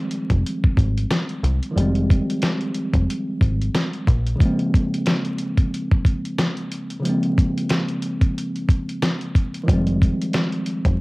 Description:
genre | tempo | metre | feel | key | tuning
hip hop, boom-bap hip-hop | 91 BPM | 4/4 | swing 56% on 16ths | F minor | A4 = 440 Hz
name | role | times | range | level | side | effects
mellow tine electric piano | accompaniment | 0.0-11.0 s | Db3 to C4 | -24 LUFS | equal | medium stereo tremolo, high-pass filter, low-pass filter, cassette tape
dusty soul sampler-style drum kit | drums | 0.1-11.0 s | hi-hat, kick drum, snare drum | -19 LUFS | equal | none
deep dub picked electric bass | bass | 0.3-4.3, 9.7-11.0 s | F1 to C2 | -21 LUFS | equal | tube saturation
room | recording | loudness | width
little or no reverb | home recording on cassette, vinyl crackle | -18 LUFS | side -24 dB against mid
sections
0.0-11.0 A section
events
none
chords
0.0 Fm7; 4.1 Bbm7; 9.7 Fm7

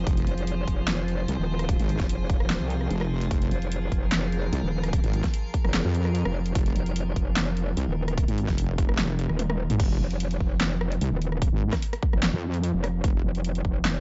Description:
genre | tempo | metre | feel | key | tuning
heavy wobble dubstep | 148 BPM | 4/4 | half-time | F minor | A4 = 440 Hz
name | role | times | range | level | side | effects
evolving wavetable pad | sustained chords | 0.0-9.8 s | F3 to C5 | -39 LUFS | equal | chorus, built-in reverb, phaser, sidechain pumping
metallic wobble bass | bass | 0.0-14.0 s | Eb1 to C2 | -29 LUFS | equal | chorus, overdrive
wobble bass | bass | 0.1-13.2 s | F1 to F2 | -28 LUFS | equal | chorus, overdrive
big-room dance drum kit | drums | 0.1-13.9 s | crash cymbal, handclaps, hi-hat, rim click, snare drum, toms | -32 LUFS | equal | overdrive
electronic kick drum | drums | 0.1-13.7 s | none | -28 LUFS | equal | overdrive
room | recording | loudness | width
little or no reverb | dark, warm production, nothing above 7.6 kHz | -26 LUFS | mono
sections
0.0-9.8 A section; 9.8-14.0 A section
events
drop 0.0-9.8, 9.8-14.0; drum fill 9.4-9.8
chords
0.0 Fm; 9.8 N.C.

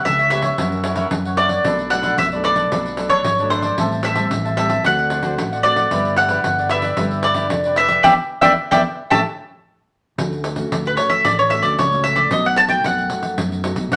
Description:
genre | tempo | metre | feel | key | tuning
samba and choro | 112 BPM | 4/4 | straight | D major | A4 = 442 Hz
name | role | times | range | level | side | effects
mandolin | melody | 0.0-14.0 s | B4 to A5 | -19 LUFS | equal | none
nylon-string guitar | accompaniment | 0.0-14.0 s | F#2 to B4 | -30 LUFS | equal | none
fingered electric bass | bass | 0.1-14.0 s | F1 to F#2 | -28 LUFS | equal | none
pandeiro | percussion | 0.1-14.0 s | none | -27 LUFS | equal | none
cavaquinho | accompaniment | 0.2-9.2 s | D4 to A5 | -27 LUFS | equal | none
room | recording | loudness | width
wet studio reverb, RT60 0.8 s | none | -18 LUFS | mono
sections
0.0-10.2 A section; 10.2-14.0 B section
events
band accent 8.0-10.2; mandolin solo 10.2-14.0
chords
0.0 C#m7b5; 0.6 F#7; 1.6 Bm7; 3.8 Am7; 4.8 D7; 5.9 G6; 8.0 E7(no3); 9.1 A7; 10.2 Dmaj7; 12.3 B7

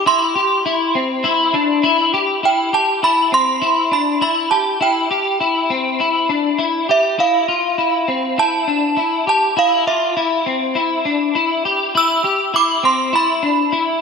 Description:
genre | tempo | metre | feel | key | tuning
dream pop | 101 BPM | 4/4 | straight | C major | A4 = 439 Hz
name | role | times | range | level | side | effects
synth chime | melody | 0.0-14.0 s | E5 to E6 | -17 LUFS | right 3 dB | ensemble chorus, tape echo
electric guitar at the edge of break-up | arpeggios | 0.0-14.0 s | C4 to G4 | -16 LUFS | left 3 dB | ensemble chorus, tape echo
room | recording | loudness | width
wet plate reverb, RT60 2.8 s | none | -14 LUFS | side -5 dB against mid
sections
0.0-2.4 A section; 2.4-14.0 B section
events
none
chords
0.1 C; 7.2 Fmaj7/C; 11.9 Cmaj7

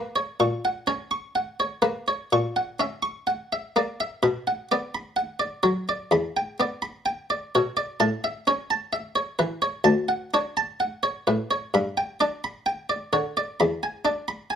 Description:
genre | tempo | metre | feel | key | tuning
classical, baroque-style suite movement for harpsichord | 64 BPM | 4/4 | rubato | unclear | A4 = 441 Hz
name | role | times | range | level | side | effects
buff-stop harpsichord | solo | 0.0-14.6 s | D2 to C#6 | -22 LUFS | equal | none
room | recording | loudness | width
moderate studio reverb, RT60 0.5 s | none | -23 LUFS | side -8 dB against mid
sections
0.0-14.6 A section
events
none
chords
0.0 F#/A#; 2.3 F#7/A#; 4.2 Bm; 6.1 Em7; 8.0 A; 9.9 Dmaj7; 11.7 G; 13.6 E7

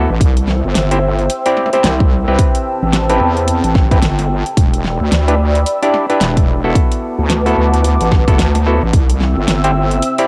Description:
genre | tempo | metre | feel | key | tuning
glitch hop | 110 BPM | 4/4 | swing 59% on 16ths | unclear | A4 = 440 Hz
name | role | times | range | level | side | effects
dark analog pad | sustained chords | 0.0-10.3 s | C4 to E6 | -22 LUFS | equal | chorus, sidechain pumping
overdriven clav | stabs | 0.0-10.3 s | B3 to D5 | -20 LUFS | equal | vintage 12-bit sampler grit, sidechain pumping, analog delay
wobble bass | bass | 0.0-10.0 s | E1 to E2 | -18 LUFS | equal | chorus, tube saturation
electronic kick drum | drums | 0.2-9.1 s | none | -15 LUFS | equal | cassette tape
pop drum kit | drums | 0.2-10.3 s | hi-hat, snare drum | -22 LUFS | equal | cassette tape
room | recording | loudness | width
light reverb, digital ambience | home recording on cassette | -14 LUFS | mono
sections
0.0-10.3 A section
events
none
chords
0.2 C; 2.4 Am7; 4.6 Em7; 6.8 D6; 8.9 C

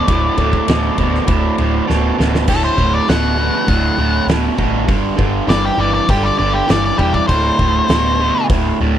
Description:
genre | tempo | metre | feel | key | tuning
blues rock power trio and southern rock | 100 BPM | 4/4 | straight | D mixolydian | A4 = 440 Hz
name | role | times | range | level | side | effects
octave-fuzz lead guitar | melody | 0.0-8.5 s | G4 to F#5 | -19 LUFS | left 2 dB | distortion
tonewheel organ | sustained chords | 0.0-2.5 s | F#4 to D5 | -28 LUFS | right 4 dB | slow rotary speaker, overdrive, chorus vibrato
raw garage guitar | riff | 0.0-9.0 s | D2 to E3 | -17 LUFS | right 2 dB | overdrive
vintage muted picked electric bass | bass | 0.1-9.0 s | D1 to A1 | -19 LUFS | equal | none
oversized low-tuned drum kit | drums | 0.1-8.6 s | crash cymbal, hi-hat, kick drum, ride cymbal, snare drum | -19 LUFS | equal | none
room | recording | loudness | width
small room ambience | dry, close 1970s-style studio recording | -13 LUFS | side -10 dB against mid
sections
0.0-2.5 A section; 2.5-9.0 B section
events
drum fill 1.9-2.5; lead electric guitar solo 2.5-9.0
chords
0.0 D7; 2.5 D; 4.9 G5; 7.3 D5

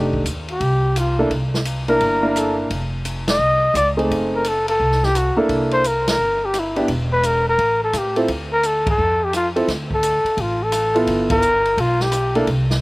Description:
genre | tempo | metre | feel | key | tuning
jazz, small-group swing and bop | 172 BPM | 4/4 | swing 65% on 8ths | C mixolydian | A4 = 439 Hz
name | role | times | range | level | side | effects
warm baby grand piano | accompaniment | 0.0-12.5 s | A3 to Bb4 | -19 LUFS | right 1 dB | slapback echo
upright bass | bass | 0.0-12.8 s | E1 to A2 | -23 LUFS | equal | none
open jazz drum kit | drums | 0.1-12.8 s | hi-hat, kick drum, ride cymbal, rim click, snare drum | -27 LUFS | equal | none
breathy trumpet | melody | 0.5-12.4 s | E4 to Eb5 | -18 LUFS | left 1 dB | slapback echo
room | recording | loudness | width
little or no reverb | recorded outdoors, with no room sound | -16 LUFS | side -22 dB against mid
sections
0.0-12.8 A section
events
band accent 3.2, 6.0, 8.8, 11.2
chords
0.0 F13; 1.3 C9; 2.7 F7(no3); 4.1 F#dim7; 5.5 C13; 6.9 E5; 7.6 Am; 8.3 Dm; 11.1 G13

